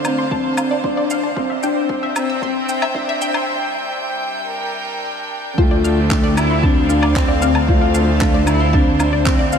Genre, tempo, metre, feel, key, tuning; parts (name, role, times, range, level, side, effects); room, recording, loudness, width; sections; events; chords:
piano and strings electronica; 114 BPM; 4/4; straight; D minor; A4 = 442 Hz
rich chamber string section; sustained chords; 0.0-9.6 s; C3 to G5; -24 LUFS; equal
electronic shaker, woodblock and handclaps; drums; 0.0-9.6 s; -27 LUFS; equal; overdrive, high-pass filter on perc, high-pass filter on snare, high-pass filter on room
dark upright piano; riff; 0.1-9.6 s; C4 to F4; -22 LUFS; left 3 dB; lush chorus, analog delay
analog pluck; arpeggios; 0.2-9.6 s; C5 to E6; -24 LUFS; left 1 dB; chorus, phaser, sidechain pumping, analog delay
electronic kick drum; drums; 0.3-9.4 s; -18 LUFS; right 1 dB; overdrive
dark cello; melody; 5.6-9.6 s; A3 to E4; -19 LUFS; equal; analog delay
clear symphonic double bass section; bass; 5.6-9.6 s; D2; -19 LUFS; right 1 dB; sidechain pumping
wet cathedral reverb, RT60 5.9 s; dreamy mix soaked in reverb, high-pass filter; -15 LUFS; side -7 dB against mid
0.0-5.6 A section; 5.6-9.6 B section
build-up 0.0-5.6; filter sweep on synth arpeggio sound 0.0-5.6; filter sweep 0.0-5.6; break 3.5-5.6; drop 5.6-9.6
0.0 Dm7; 1.4 C; 3.5 Gm; 5.6 Dm7